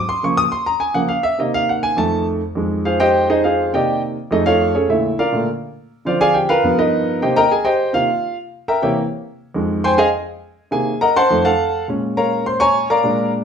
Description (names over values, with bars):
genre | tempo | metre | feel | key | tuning
jazz | 206 BPM | 4/4 | straight | F minor | A4 = 440 Hz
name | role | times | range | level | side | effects
warm grand piano | solo | 0.0-13.4 s | F2 to Eb6 | -15 LUFS | equal | none
room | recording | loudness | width
moderate large studio reverb, RT60 0.8 s | band playing live in one room | -15 LUFS | side -7 dB against mid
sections
0.0-2.6 A section; 2.6-11.9 A section; 11.9-13.4 A section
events
grand piano solo 0.0-2.6, 2.6-13.4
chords
0.2 Db6; 1.4 Cm7b5; 2.0 F7; 2.6 Fm9; 3.7 Cm9; 4.3 F7alt; 4.9 Bbmaj7; 6.1 Dm7b5; 6.6 G7alt; 7.2 Cm7; 8.4 C7; 9.6 Fm7; 10.7 Cm7b5; 11.3 F7b9; 11.9 Bbm7